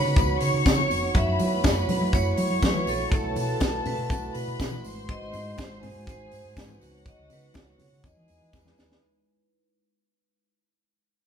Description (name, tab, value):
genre	disco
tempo	122 BPM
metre	4/4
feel	straight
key	F# dorian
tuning	A4 = 440 Hz
part	vibraphone with hard mallets	melody	0.0-8.5 s	A4 to E5	-36 LUFS	equal	none
part	warm chamber violin section	second line	0.0-9.0 s	F#4 to C#6	-30 LUFS	left 3 dB	none
part	glass harmonica	sustained chords	0.0-9.0 s	G#3 to C#5	-31 LUFS	right 4 dB	none
part	hollow-body short-scale fingered electric bass	bass	0.1-9.0 s	E#1 to F#3	-29 LUFS	right 1 dB	none
part	tight funk drum kit	drums	0.2-9.0 s	hi-hat, kick drum, snare drum	-25 LUFS	equal	none
part	congas	percussion	0.2-8.8 s	none	-36 LUFS	left 5 dB	none
part	tambourine	percussion	0.2-8.9 s	none	-44 LUFS	right 4 dB	none
room	moderate large studio reverb, RT60 1.3 s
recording	band playing live in one room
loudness	-22 LUFS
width	side -8 dB against mid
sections	0.0-9.0 A section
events	fade-out 0.0-9.0; drum fill 8.5-9.0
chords	0.0 C#9sus4; 1.2 F#m7; 3.1 B7sus4; 4.8 G#7; 6.8 C#9sus4; 8.0 Emaj7